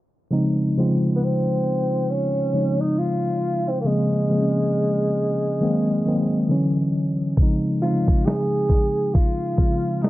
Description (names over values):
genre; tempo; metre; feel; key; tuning
lo-fi hip hop; 68 BPM; 4/4; swing 59% on 16ths; Db major; A4 = 438 Hz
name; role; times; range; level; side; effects
tine electric piano; accompaniment; 0.3-10.1 s; Db3 to F4; -21 LUFS; equal; medium stereo tremolo, cassette tape
breathy tenor saxophone; melody; 1.2-10.1 s; Ab3 to Ab4; -24 LUFS; equal; plate reverb
dusty soul sampler-style drum kit; drums; 7.4-10.1 s; hi-hat, kick drum, snare drum; -18 LUFS; equal; none
room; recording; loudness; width
moderate studio ambience, RT60 0.5 s; dark, warm production, vinyl crackle, low-pass filter; -19 LUFS; side -17 dB against mid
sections
0.3-10.1 A section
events
filter sweep 0.3-10.1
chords
0.3 Dbmaj7; 3.8 Bbm9; 5.6 Ab7; 6.5 Dmaj7; 7.4 Dbmaj7